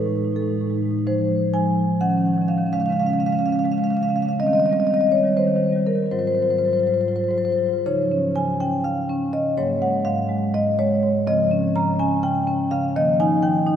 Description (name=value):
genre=classical, contemporary piece for solo marimba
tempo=249 BPM (eighths)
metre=7/8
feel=straight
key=Db major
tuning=A4 = 440 Hz
part: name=marimba with medium mallets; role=solo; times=0.0-13.8 s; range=Ab2 to Bb5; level=-18 LUFS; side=equal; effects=none
room=wet church reverb, RT60 2.8 s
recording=none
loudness=-18 LUFS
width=side -9 dB against mid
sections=0.0-7.9 A section; 7.9-13.8 B section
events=none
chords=0.0 B7/A (rootless); 1.1 Fm7; 2.0 Ebm9; 2.7 Db; 4.4 Eb6; 6.1 Ab6; 7.9 Dbadd9; 9.6 Ab9sus4; 11.3 Dbmaj9; 13.0 Ebadd9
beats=0.13 0.36 0.60 0.83 | 1.07 1.30 1.54 1.78 2.01 2.25 2.49 | 2.73 2.97 3.21 3.44 3.68 3.92 4.16 | 4.40 4.64 4.88 5.13 5.37 5.62 5.87 | 6.12 6.37 6.62 6.87 7.12 7.37 7.62 | 7.87 8.12 8.36 8.61 8.85 9.09 9.33 | 9.57 9.82 10.06 10.30 10.54 10.78 11.02 | 11.27 11.51 11.75 11.99 12.23 12.47 12.71 | 12.95 13.19 13.43 13.67